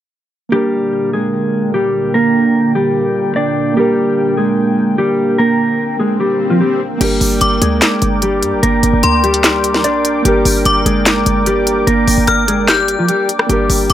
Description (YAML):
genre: hip hop, trap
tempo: 148 BPM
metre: 4/4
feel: half-time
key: G phrygian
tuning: A4 = 440 Hz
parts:
  - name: mellow electric guitar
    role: melody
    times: 0.5-13.9 s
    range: F3 to D5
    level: -15 LUFS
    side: equal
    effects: none
  - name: muted felt-like synth keys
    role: accompaniment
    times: 0.5-13.9 s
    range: Bb3 to Bb4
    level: -19 LUFS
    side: right 3 dB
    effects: chorus
  - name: dark analog pad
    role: sustained chords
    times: 0.5-13.9 s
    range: Bb2 to D6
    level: -21 LUFS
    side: equal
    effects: chorus
  - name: swell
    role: sound effects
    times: 5.9-7.0 s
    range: none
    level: -22 LUFS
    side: left 7 dB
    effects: none
  - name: short 808-style bass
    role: bass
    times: 7.0-13.9 s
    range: G1 to G2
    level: -18 LUFS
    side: equal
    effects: none
  - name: trap drum kit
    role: drums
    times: 7.0-13.9 s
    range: crash cymbal, handclaps, hi-hat, rim click, snare drum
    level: -15 LUFS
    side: left 1 dB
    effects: none
  - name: metallic FM bell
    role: second line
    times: 7.4-13.9 s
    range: C6 to G6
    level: -18 LUFS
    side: left 4 dB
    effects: chorus, tape echo
room: light reverb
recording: none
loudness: -11 LUFS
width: side -11 dB against mid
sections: 0.5-7.0 A section; 7.0-13.9 B section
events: swell 5.9-7.0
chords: 0.5 Gm